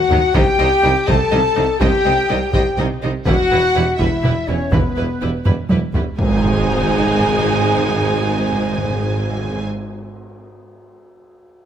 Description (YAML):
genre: cinematic, epic orchestral film score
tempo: 82 BPM (dotted quarters)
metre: 6/8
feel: straight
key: unclear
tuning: A4 = 440 Hz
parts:
  - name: dark symphonic violin section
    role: melody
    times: 0.0-9.6 s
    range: B4 to A5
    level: -28 LUFS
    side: left 3 dB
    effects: none
  - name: large flute ensemble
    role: second line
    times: 0.0-9.6 s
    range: B4 to A5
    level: -23 LUFS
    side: equal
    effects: none
  - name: mellow French horn section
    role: sustained chords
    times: 0.0-9.6 s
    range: B3 to A4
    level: -20 LUFS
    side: left 4 dB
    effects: none
  - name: dark symphonic violin section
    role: second line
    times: 0.1-9.6 s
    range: A#4 to G#5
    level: -27 LUFS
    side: left 1 dB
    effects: none
  - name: warm symphonic viola section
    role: accompaniment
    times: 0.1-9.6 s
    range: F#3 to E4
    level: -25 LUFS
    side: right 2 dB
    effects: none
  - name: rich symphonic cello section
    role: bass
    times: 0.1-9.6 s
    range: E2 to D#3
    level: -25 LUFS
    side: right 3 dB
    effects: none
  - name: rich symphonic double bass section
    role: bass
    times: 0.1-9.6 s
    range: E1 to D#2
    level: -25 LUFS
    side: right 3 dB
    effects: none
  - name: warm tuba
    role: bass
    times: 0.1-9.6 s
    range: E1 to D#2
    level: -26 LUFS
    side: right 4 dB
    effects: none
  - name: taiko ensemble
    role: drums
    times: 0.1-6.2 s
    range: none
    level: -19 LUFS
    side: equal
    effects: none
  - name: tam-tam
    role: percussion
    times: 6.2-8.1 s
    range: none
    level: -30 LUFS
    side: left 1 dB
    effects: none
  - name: timpani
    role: percussion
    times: 6.2-9.6 s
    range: G#2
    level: -25 LUFS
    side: left 1 dB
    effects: none
  - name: impact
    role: sound effects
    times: 6.2-7.6 s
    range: none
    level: -29 LUFS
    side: equal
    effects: none
room: light reverb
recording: close, detailed microphones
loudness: -14 LUFS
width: side -9 dB against mid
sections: 0.0-6.2 A section; 6.2-9.1 B section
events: drum fill 0.0-0.3, 5.5-6.2; band accent 6.2-6.7; impact 6.2-7.7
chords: 0.3 Cm; 3.3 Em; 6.2 G#